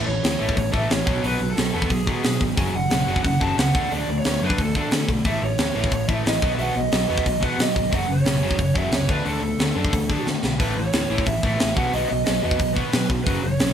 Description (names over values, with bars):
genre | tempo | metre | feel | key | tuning
punk rock | 180 BPM | 4/4 | straight | unclear | A4 = 440 Hz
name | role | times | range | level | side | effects
distorted electric guitar | riff | 0.0-13.7 s | F#2 to D4 | -24 LUFS | equal | distortion
lead guitar through a small cranked amp | melody | 0.1-13.7 s | G#4 to A5 | -26 LUFS | right 2 dB | overdrive
picked electric bass | bass | 0.1-13.7 s | F#1 to D3 | -28 LUFS | equal | none
tight metal drum kit | drums | 0.2-13.7 s | hi-hat, kick drum, snare drum, splash cymbal | -24 LUFS | equal | none
room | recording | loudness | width
light reverb | band playing live in one room | -19 LUFS | side -9 dB against mid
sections
0.0-13.7 A section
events
drum fill 10.3-10.6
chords
0.0 A; 1.1 B5; 2.6 F#5; 3.8 D5; 5.3 A; 6.4 B; 7.9 F#5; 9.1 D5; 10.6 A; 11.8 B